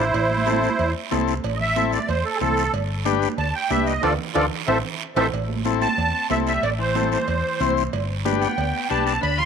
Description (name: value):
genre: latin, cumbia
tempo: 185 BPM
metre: 4/4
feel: straight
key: A minor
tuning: A4 = 440 Hz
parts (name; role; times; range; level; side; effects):
- musette accordion; melody; 0.0-9.5 s; E4 to C6; -23 LUFS; right 3 dB; none
- combo organ; accompaniment; 0.0-9.1 s; C4 to C5; -26 LUFS; left 12 dB; none
- hollow-body short-scale fingered electric bass; bass; 0.0-9.5 s; G1 to E2; -26 LUFS; equal; none
- congas; percussion; 0.1-9.5 s; none; -30 LUFS; right 12 dB; none
- cowbell and timbales; percussion; 0.1-9.4 s; none; -30 LUFS; right 13 dB; none
- guiro; percussion; 0.1-9.5 s; none; -34 LUFS; right 15 dB; none
- clean electric guitar; second line; 5.8-9.5 s; E3 to F4; -31 LUFS; left 13 dB; spring reverb, tape echo
room: light reverb, small room ambience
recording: 1960s-style stereo with parts hard left and right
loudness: -20 LUFS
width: side -7 dB against mid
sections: 0.0-5.3 A section; 5.3-9.5 B section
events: accordion solo 0.0-5.3; drum fill 4.0-5.3; band accent 4.0-5.3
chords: 0.1 Am; 2.7 G; 4.0 Dm; 4.7 Am; 7.9 G